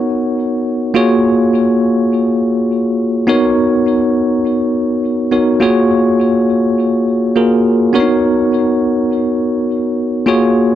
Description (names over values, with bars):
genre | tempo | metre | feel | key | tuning
R&B | 103 BPM | 4/4 | swing 64% on 16ths | unclear | A4 = 440 Hz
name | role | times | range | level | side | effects
bell-like tine electric piano | solo | 0.0-10.8 s | A#3 to F#5 | -12 LUFS | equal | fast stereo tremolo, ping-pong delay
room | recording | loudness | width
moderate echo chamber reverb, RT60 1.5 s, digital ambience | dark, warm production | -12 LUFS | side -11 dB against mid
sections
0.0-10.8 A section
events
none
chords
0.0 Bmaj9; 0.9 F#maj9; 3.3 Bmaj9; 5.6 F#maj9; 7.9 Bmaj9